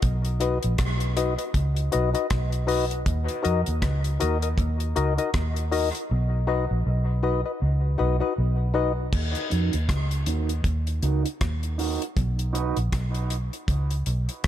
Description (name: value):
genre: dub reggae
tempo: 79 BPM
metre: 4/4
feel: swing 59% on 16ths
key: Eb minor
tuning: A4 = 440 Hz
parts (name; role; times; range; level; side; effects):
- vintage muted fingered electric bass; bass; 0.0-14.5 s; Bb1 to F2; -24 LUFS; equal; none
- deep reggae drum kit; drums; 0.0-14.5 s; crash cymbal, hi-hat, kick drum, rim click; -29 LUFS; equal; none
- percussive organ stab; stabs; 0.4-8.9 s; D#4 to D#5; -27 LUFS; left 5 dB; chorus, low-pass filter, dub echo
- electric guitar at the edge of break-up; accompaniment; 9.5-12.8 s; Eb4 to Eb5; -32 LUFS; right 10 dB; low-pass filter, dub echo
room: light reverb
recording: none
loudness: -22 LUFS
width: side -11 dB against mid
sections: 0.0-9.1 A section; 9.1-14.5 B section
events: break 0.0-9.1; part muted 6.1-9.1; filter sweep 9.1-14.5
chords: 0.0 B; 3.1 Ebm; 6.1 B; 9.1 Ebm; 12.2 B